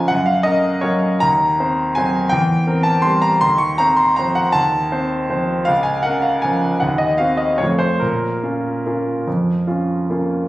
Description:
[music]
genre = classical, piano waltz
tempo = 140-173 BPM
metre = 3/4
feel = rubato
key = Bb minor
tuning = A4 = 441 Hz
[part]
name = clear concert grand piano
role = solo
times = 0.0-10.5 s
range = Db2 to Db6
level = -15 LUFS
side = equal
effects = none
[sound]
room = moderate recital hall reverb, RT60 1.6 s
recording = recorded on a phone in the room, studio reverb, compression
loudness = -15 LUFS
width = side -16 dB against mid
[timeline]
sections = 0.0-10.5 A section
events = none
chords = 0.1 Gb; 1.2 Cm7b5/Eb; 2.3 C7/E; 3.4 F7/Eb; 5.7 Bbm/Db; 6.8 Cdim/Eb; 7.6 F; 8.0 Bbm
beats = | 0.10 0.46 0.83 | 1.23 1.60 1.96 | 2.32 2.68 3.06 | 3.43 3.80 4.17 | 4.55 4.91 5.30 | 5.67 6.05 6.44 | 6.83 7.20 7.61 | 8.02 8.43 8.86 | 9.26 9.67 10.10

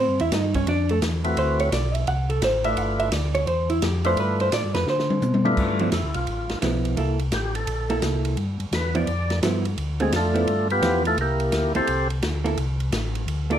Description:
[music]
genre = soul jazz organ trio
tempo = 171 BPM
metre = 4/4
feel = swing 64% on 8ths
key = G mixolydian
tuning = A4 = 440 Hz
[part]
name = vintage hollow-body jazz guitar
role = accompaniment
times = 0.0-13.6 s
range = D3 to F#5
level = -24 LUFS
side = right 2 dB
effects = none
[part]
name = mellow tonewheel organ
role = bass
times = 0.0-13.6 s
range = G1 to D3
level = -25 LUFS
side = equal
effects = chorus vibrato, slow rotary speaker
[part]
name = swinging big-band drum kit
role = drums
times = 0.2-13.6 s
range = crash cymbal, hi-hat, kick drum, ride cymbal, snare drum, toms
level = -29 LUFS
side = left 1 dB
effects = none
[part]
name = percussive tonewheel organ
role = melody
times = 1.2-13.6 s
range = G2 to D5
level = -24 LUFS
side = left 1 dB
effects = slow rotary speaker, plate reverb
[sound]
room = moderate studio reverb, RT60 0.6 s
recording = none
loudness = -21 LUFS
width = side -10 dB against mid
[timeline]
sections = 0.0-5.6 A section; 5.6-13.6 A section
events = hollow-body jazz guitar solo 0.0-5.6; drum fill 4.9-5.6; tonewheel organ solo 5.6-13.6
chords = 0.0 Am7; 1.4 D13; 2.8 G13; 3.5 E5; 4.2 G13; 4.9 Dsus2; 5.6 G13; 7.0 C6; 8.4 G6; 9.8 Dm7; 10.5 G13; 11.2 C13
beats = 0.32 0.67 1.02 | 1.37 1.72 2.07 2.42 | 2.77 3.12 3.47 3.82 | 4.17 4.52 4.87 5.22 | 5.57 5.92 6.27 6.62 | 6.97 7.32 7.67 8.02 | 8.37 8.72 9.07 9.42 | 9.77 10.12 10.47 10.82 | 11.17 11.52 11.87 12.22 | 12.57 12.92 13.27

